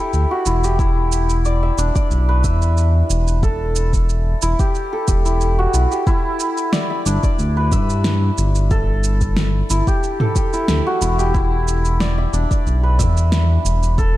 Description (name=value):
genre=organic downtempo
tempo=91 BPM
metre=4/4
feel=swing 53% on 16ths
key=E minor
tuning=A4 = 440 Hz
part: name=santur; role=arpeggios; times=0.0-14.2 s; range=D4 to E5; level=-21 LUFS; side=equal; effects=ping-pong delay
part: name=smooth synth bass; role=bass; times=0.1-14.2 s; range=E1 to G2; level=-17 LUFS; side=equal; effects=tube saturation, sidechain pumping
part: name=deep house drum kit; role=drums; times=0.1-14.1 s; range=shaker, snare drum, toms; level=-24 LUFS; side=right 1 dB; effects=none
part: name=electronic kick drum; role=drums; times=0.8-14.1 s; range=none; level=-19 LUFS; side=equal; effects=none
room=light reverb, digital ambience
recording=dark, warm production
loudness=-15 LUFS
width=side -15 dB against mid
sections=0.0-14.2 A section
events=none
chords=0.0 Em7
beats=0.14 | 0.80 1.46 2.11 2.77 | 3.43 4.09 4.75 5.41 | 6.07 6.73 7.39 8.05 | 8.71 9.37 10.03 10.69 | 11.35 12.00 12.66 13.32 | 13.98